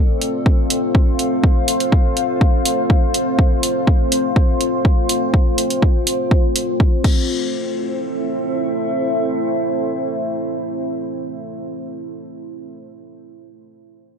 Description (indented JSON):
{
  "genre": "melodic techno",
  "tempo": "123 BPM",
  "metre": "4/4",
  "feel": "straight",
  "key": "A minor",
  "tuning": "A4 = 444 Hz",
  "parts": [
    { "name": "deep dark ambient pad", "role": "sustained chords", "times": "0.0-11.6 s", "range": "A3 to C5", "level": "-21 LUFS", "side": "left 1 dB", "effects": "chorus, built-in reverb, sidechain pumping" },
    { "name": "warbly tape-like pad", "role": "texture", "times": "0.0-12.0 s", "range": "C4 to G5", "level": "-27 LUFS", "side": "equal", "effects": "chorus, built-in reverb, sidechain pumping" },
    { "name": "punchy analog drum machine", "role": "drums", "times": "0.2-7.1 s", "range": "crash cymbal, hi-hat", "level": "-22 LUFS", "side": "right 2 dB", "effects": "none" },
    { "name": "electronic kick drum", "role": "drums", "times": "0.5-7.1 s", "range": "none", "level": "-14 LUFS", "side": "equal", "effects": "overdrive" }
  ],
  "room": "light reverb",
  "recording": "none",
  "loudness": "-15 LUFS",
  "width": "side -7 dB against mid",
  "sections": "0.0-7.3 A section; 7.3-11.2 B section",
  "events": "fade-out on ambient pad 0.0-7.3",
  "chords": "0.0 F; 7.0 Am"
}